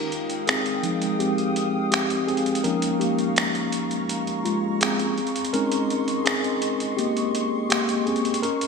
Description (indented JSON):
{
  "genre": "contemporary R&B",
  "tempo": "83 BPM",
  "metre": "4/4",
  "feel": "straight",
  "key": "unclear",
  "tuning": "A4 = 440 Hz",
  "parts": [
    { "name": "mellow tine electric piano", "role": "accompaniment", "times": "0.0-8.7 s", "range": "F3 to Bb4", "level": "-24 LUFS", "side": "left 1 dB", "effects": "medium stereo tremolo" },
    { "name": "glassy FM pad", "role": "sustained chords", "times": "0.0-8.7 s", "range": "Ab3 to Eb6", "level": "-28 LUFS", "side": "equal", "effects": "ensemble chorus, built-in reverb" },
    { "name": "dusty soul sampler-style drum kit", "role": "drums", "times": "0.1-8.7 s", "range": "finger snaps, hi-hat", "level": "-27 LUFS", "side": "right 1 dB", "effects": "gated reverb" }
  ],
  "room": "wet lush hall reverb, RT60 2.7 s",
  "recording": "bright 1980s-style digital production",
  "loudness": "-21 LUFS",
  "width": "side -5 dB against mid",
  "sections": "0.0-8.7 A section",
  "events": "break 0.0-8.7; tine electric piano solo 0.0-8.7",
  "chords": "0.0 Fm9; 2.6 Db6; 5.2 Bbm11",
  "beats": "0.48 1.20 1.92 | 2.65 3.37 4.09 4.81 | 5.54 6.26 6.98 7.71 | 8.43"
}